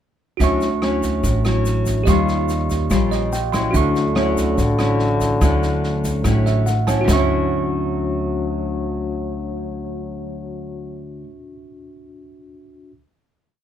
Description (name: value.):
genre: bossa nova.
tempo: 144 BPM.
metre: 4/4.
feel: straight.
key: D major.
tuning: A4 = 435 Hz.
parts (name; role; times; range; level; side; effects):
bell-like tine electric piano; accompaniment; 0.4-12.9 s; D4 to C#6; -25 LUFS; right 2 dB; medium stereo tremolo.
nylon-string guitar; accompaniment; 0.4-11.4 s; A2 to F4; -22 LUFS; left 1 dB; none.
upright bass; bass; 0.4-11.2 s; A1 to Eb2; -22 LUFS; equal; none.
open jazz drum kit; drums; 0.4-7.2 s; kick drum, rim click, snare drum, toms; -26 LUFS; equal; none.
egg shaker; percussion; 0.4-7.2 s; none; -36 LUFS; left 5 dB; none.
breathy trombone; second line; 3.7-11.2 s; D3 to F#3; -25 LUFS; left 3 dB; none.
room: light reverb.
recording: none.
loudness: -17 LUFS.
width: side -10 dB against mid.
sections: 0.4-7.1 A section; 7.1-10.4 final chord.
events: tine electric piano fill 2.9-3.7, 6.3-7.1.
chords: 0.4 Dmaj9; 2.1 Eb9; 3.7 Dmaj9.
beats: | 0.40 0.81 1.23 1.65 | 2.07 2.49 2.90 3.32 | 3.74 4.16 4.58 5.00 | 5.42 5.83 6.25 6.67 | 7.08 7.50 7.92 8.33 | 8.75 9.17 9.58 10.00.